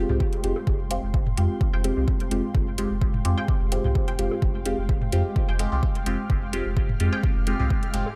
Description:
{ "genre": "dub techno", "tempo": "128 BPM", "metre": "4/4", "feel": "swing 53% on 16ths", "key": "F minor", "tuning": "A4 = 441 Hz", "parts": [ { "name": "granular cloud pad", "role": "sustained chords", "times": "0.0-8.2 s", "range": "Ab3 to F6", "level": "-38 LUFS", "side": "equal", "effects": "built-in reverb, sidechain pumping" }, { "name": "deep mellow chord stab", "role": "stabs", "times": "0.0-8.0 s", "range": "Ab3 to G4", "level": "-31 LUFS", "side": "equal", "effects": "chorus, phaser, sidechain pumping, dub echo" }, { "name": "pure sine sub bass", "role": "bass", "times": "0.0-8.0 s", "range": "F1 to F2", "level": "-29 LUFS", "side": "equal", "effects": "tube saturation, sidechain pumping" }, { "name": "electronic toms and bongos", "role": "percussion", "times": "0.1-8.2 s", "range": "none", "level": "-35 LUFS", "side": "equal", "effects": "sidechain pumping on perc, sidechain pumping on toms, dub echo" }, { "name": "electronic kick drum", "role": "drums", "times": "0.2-7.8 s", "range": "none", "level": "-27 LUFS", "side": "equal", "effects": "overdrive" }, { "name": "electronic hi-hat", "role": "drums", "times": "0.3-8.0 s", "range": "none", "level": "-36 LUFS", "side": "equal", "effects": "overdrive" }, { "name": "filtered dub chord stab", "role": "riff", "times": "1.7-7.2 s", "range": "F4 to G5", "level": "-41 LUFS", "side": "equal", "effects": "phaser, sidechain pumping, dub echo" } ], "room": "digital ambience", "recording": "none", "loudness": "-24 LUFS", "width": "mono", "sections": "0.0-8.2 A section", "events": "none", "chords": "0.0 Fmadd9", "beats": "0.20 | 0.67 1.14 1.61 2.08 | 2.55 3.02 3.48 3.95 | 4.42 4.89 5.36 5.83 | 6.30 6.77 7.24 7.70" }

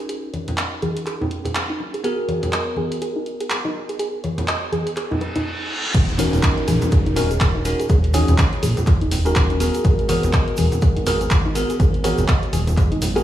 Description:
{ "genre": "deep house", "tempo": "123 BPM", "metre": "4/4", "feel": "swing 59% on 16ths", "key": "unclear", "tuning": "A4 = 442 Hz", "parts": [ { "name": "soft round pluck", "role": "arpeggios", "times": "0.0-13.2 s", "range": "D#4 to D#5", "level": "-29 LUFS", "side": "right 1 dB", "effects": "chorus, cassette tape, sidechain pumping, tape echo" }, { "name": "bell-like tine electric piano", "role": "stabs", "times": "0.0-13.2 s", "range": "B3 to A#4", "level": "-24 LUFS", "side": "equal", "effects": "phaser, sidechain pumping, low-pass filter, tape echo" }, { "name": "punchy analog drum machine", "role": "drums", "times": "0.1-13.2 s", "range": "crash cymbal, handclaps, hi-hat", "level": "-27 LUFS", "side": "right 1 dB", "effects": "none" }, { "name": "congas and bongos", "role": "percussion", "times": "0.3-13.2 s", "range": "none", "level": "-26 LUFS", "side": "left 1 dB", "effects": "none" }, { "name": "reverse cymbal and downlifter", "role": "sound effects", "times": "5.1-9.8 s", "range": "none", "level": "-29 LUFS", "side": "right 1 dB", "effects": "none" }, { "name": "smooth gliding synth bass", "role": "bass", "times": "5.9-13.2 s", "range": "D#1 to A#1", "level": "-21 LUFS", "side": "equal", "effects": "sidechain pumping" }, { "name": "electronic kick drum", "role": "drums", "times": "5.9-12.9 s", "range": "none", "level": "-18 LUFS", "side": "equal", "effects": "none" }, { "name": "egg shaker", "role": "percussion", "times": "5.9-13.2 s", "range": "none", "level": "-38 LUFS", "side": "right 4 dB", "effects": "none" } ], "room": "light reverb, digital ambience", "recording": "played on a big sound system in a bare room, stone room reverb, small room ambience", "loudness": "-17 LUFS", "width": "side -12 dB against mid", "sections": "0.0-5.9 A section; 5.9-13.2 B section", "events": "filter sweep on synth arpeggio sound 0.0-5.9; reverse cymbal 5.1-5.9; drop 5.9-13.2", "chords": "0.0 D#m7; 2.0 G#m9; 5.9 D#m7", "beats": "| 0.09 0.58 1.07 1.55 | 2.04 2.53 3.02 3.51 | 3.99 4.48 4.97 5.46 | 5.95 6.43 6.92 7.41 | 7.90 8.38 8.87 9.36 | 9.85 10.34 10.82 11.31 | 11.80 12.29 12.78" }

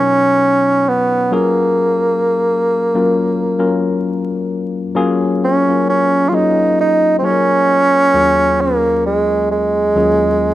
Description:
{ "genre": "R&B", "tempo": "66 BPM", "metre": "4/4", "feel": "swing 60% on 16ths", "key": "F# major", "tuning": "A4 = 440 Hz", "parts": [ { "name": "mellow bassoon", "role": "melody", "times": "0.0-10.5 s", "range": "G#3 to E#4", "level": "-13 LUFS", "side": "right 1 dB", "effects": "none" }, { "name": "tine electric piano", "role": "accompaniment", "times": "0.0-10.5 s", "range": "D#2 to C#5", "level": "-18 LUFS", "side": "left 3 dB", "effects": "none" } ], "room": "light reverb, small room ambience", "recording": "vinyl crackle", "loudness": "-12 LUFS", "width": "side -14 dB against mid", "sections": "0.0-5.0 A section; 5.0-10.5 B section", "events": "none", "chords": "0.0 Bmaj9; 1.3 F#maj9; 8.1 D#m11", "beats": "0.41 | 1.31 2.22 3.13 4.04 | 4.95 5.86 6.77 7.68 | 8.59 9.50 10.41" }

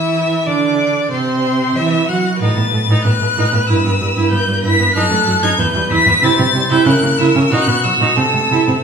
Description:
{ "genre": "quick classical-period movement for string quartet", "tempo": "94 BPM", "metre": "2/4", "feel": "rubato", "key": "E minor", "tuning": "A4 = 437 Hz", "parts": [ { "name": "rich violin", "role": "melody", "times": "0.0-8.8 s", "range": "C6 to B6", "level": "-17 LUFS", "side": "left 3 dB", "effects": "none" }, { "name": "rich violin", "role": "second line", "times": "0.0-8.8 s", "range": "F#4 to F#5", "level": "-21 LUFS", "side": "left 2 dB", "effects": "none" }, { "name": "clear viola", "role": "accompaniment", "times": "0.0-8.7 s", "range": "F#3 to F#4", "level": "-18 LUFS", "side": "right 4 dB", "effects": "none" }, { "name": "clear cello", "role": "bass", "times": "0.0-8.7 s", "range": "E2 to F#3", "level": "-17 LUFS", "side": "right 2 dB", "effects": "none" } ], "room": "wet recital hall reverb, RT60 1.7 s", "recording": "studio reverb", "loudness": "-12 LUFS", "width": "side -6 dB against mid", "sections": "0.0-8.8 A section", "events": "none", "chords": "0.0 Dsus2; 1.1 C; 2.4 B7/A; 3.7 Em/G; 4.9 D#dim/F#; 5.6 Em; 6.2 C; 6.9 F#7/C#; 7.5 B; 8.2 Am/C", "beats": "0.47 | 1.12 1.77 | 2.41 3.05 | 3.68 4.31 | 4.95 5.59 | 6.23 6.87 | 7.51 8.17" }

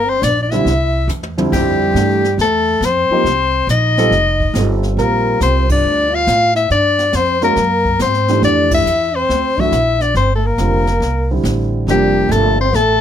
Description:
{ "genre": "jazz, small-group swing and bop", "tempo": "139 BPM", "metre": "4/4", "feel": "swing 66% on 8ths", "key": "F major", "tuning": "A4 = 440 Hz", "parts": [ { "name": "clear soprano saxophone", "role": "melody", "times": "0.0-13.0 s", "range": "G4 to F5", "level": "-15 LUFS", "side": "left 5 dB", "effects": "none" }, { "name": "breathy trombone", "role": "second line", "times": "0.0-13.0 s", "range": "G3 to F4", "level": "-21 LUFS", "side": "right 3 dB", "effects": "none" }, { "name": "upright bass", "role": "bass", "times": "0.0-13.0 s", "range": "F1 to A2", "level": "-18 LUFS", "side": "right 1 dB", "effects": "none" }, { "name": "jazz brush drum kit", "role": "drums", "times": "0.2-13.0 s", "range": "brushed snare drum, crash cymbal, hi-hat, kick drum, ride cymbal, snare drum, toms", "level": "-25 LUFS", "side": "equal", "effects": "none" }, { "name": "warm grand piano", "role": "accompaniment", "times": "0.5-12.5 s", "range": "F2 to Bb4", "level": "-18 LUFS", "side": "right 3 dB", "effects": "none" } ], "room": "little or no reverb", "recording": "close, detailed microphones", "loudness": "-12 LUFS", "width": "side -9 dB against mid", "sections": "0.0-1.5 A section; 1.5-13.0 A section", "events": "drum fill 1.1-1.5; band accent 5.6, 8.6", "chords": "0.0 Gm; 0.7 C; 1.5 Fmaj9; 3.3 Cm7; 4.1 F9; 5.0 Bb69; 6.7 Gm7; 7.6 Gb9; 8.4 Fmaj9; 9.3 D; 10.2 Gm7; 11.0 C69; 11.9 Fadd9", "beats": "0.23 0.66 1.09 | 1.52 1.96 2.39 2.82 | 3.25 3.68 4.12 4.55 | 4.98 5.41 5.84 6.27 | 6.70 7.14 7.57 8.00 | 8.43 8.86 9.29 9.72 | 10.15 10.59 11.02 11.45 | 11.88 12.31 12.74" }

